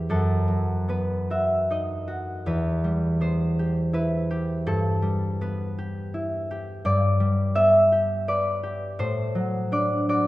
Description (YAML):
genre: classical, solo harp piece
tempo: 69-85 BPM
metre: 3/4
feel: rubato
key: E minor, G major from 6.9 s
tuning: A4 = 440 Hz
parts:
  - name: concert harp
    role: solo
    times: 0.0-10.3 s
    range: E2 to E5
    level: -22 LUFS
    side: equal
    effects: none
room: wet concert hall reverb, RT60 2.1 s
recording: none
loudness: -22 LUFS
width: side -17 dB against mid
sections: 0.0-10.3 A section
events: none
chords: 0.1 B7/F#; 2.5 Em; 4.7 Em/G; 6.9 G; 9.0 D7/A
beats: | 0.11 0.91 1.72 | 2.48 3.23 3.96 | 4.68 5.41 6.14 | 6.85 7.56 8.27 | 8.99 9.72